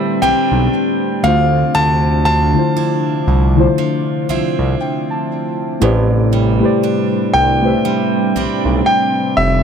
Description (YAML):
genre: contemporary R&B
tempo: 59 BPM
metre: 4/4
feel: swing 58% on 16ths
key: A minor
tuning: A4 = 443 Hz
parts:
  - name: clear concert grand piano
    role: melody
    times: 0.0-9.6 s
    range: E5 to A5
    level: -17 LUFS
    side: left 1 dB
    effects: ping-pong delay
  - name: muted felt-like synth keys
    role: accompaniment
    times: 0.0-9.6 s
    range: D3 to A5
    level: -18 LUFS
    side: left 2 dB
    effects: chorus
  - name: glassy FM pad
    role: sustained chords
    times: 0.0-9.6 s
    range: C3 to G4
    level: -22 LUFS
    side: left 1 dB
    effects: ensemble chorus, built-in reverb
  - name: picked steel-string acoustic guitar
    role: arpeggios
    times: 0.0-9.6 s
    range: A2 to E4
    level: -22 LUFS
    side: right 10 dB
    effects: ping-pong delay
  - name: smooth synth bass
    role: bass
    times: 0.2-9.6 s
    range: F1 to D2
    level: -16 LUFS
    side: right 1 dB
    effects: none
room: light reverb, small room ambience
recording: none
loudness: -13 LUFS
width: side -7 dB against mid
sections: 0.0-9.6 A section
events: synth keys fill 3.8-5.8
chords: 0.0 Am11; 1.2 Dm9; 5.8 Am11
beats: 0.73 | 1.75 2.77 3.78 4.80 | 5.82 6.83 7.85 8.87